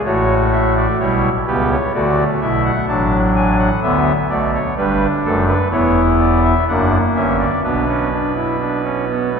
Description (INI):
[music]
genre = classical, baroque-style 4-part fugue for pipe organ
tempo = 63 BPM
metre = 4/4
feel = straight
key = D major, B minor from 3.8 s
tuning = A4 = 440 Hz
[part]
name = pipe organ, soft reed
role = solo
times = 0.0-9.4 s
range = E1 to A5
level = -14 LUFS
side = equal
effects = none
[sound]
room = wet church reverb, RT60 3.5 s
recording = heard from further back in the room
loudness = -14 LUFS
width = side -6 dB against mid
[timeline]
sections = 0.0-9.4 A section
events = none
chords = 0.1 A7; 1.9 D; 3.8 Bm; 5.7 E5; 6.7 F#7; 7.6 Bm